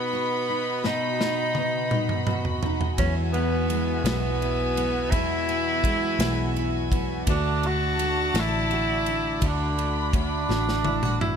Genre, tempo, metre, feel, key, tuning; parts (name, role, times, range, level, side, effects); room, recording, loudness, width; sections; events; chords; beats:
six-eight pop ballad; 56 BPM (dotted quarters); 6/8; straight; E major; A4 = 440 Hz
warm tenor saxophone; melody; 0.0-11.4 s; B3 to F#4; -26 LUFS; right 2 dB
nylon-string guitar; accompaniment; 0.0-11.4 s; E2 to F#4; -30 LUFS; equal; double-tracked left and right
warm studio string section; sustained chords; 0.0-11.4 s; F#4 to B5; -32 LUFS; left 2 dB
modern studio drum kit; drums; 0.8-11.4 s; kick drum, ride cymbal, snare drum, toms; -28 LUFS; equal
fingerpicked steel-string acoustic guitar; arpeggios; 3.0-11.4 s; E2 to F#4; -34 LUFS; left 7 dB; tape echo
vintage muted fingered electric bass; bass; 3.0-11.4 s; A1 to E2; -28 LUFS; equal
studio reverb; -22 LUFS; side -7 dB against mid
0.0-11.4 A section
drum fill 0.8-3.0, 10.5-11.4
0.0 B; 3.0 Eadd9; 7.3 D
| 0.83 1.91 | 2.98 4.05 | 5.13 6.20 | 7.27 8.35 | 9.42 10.49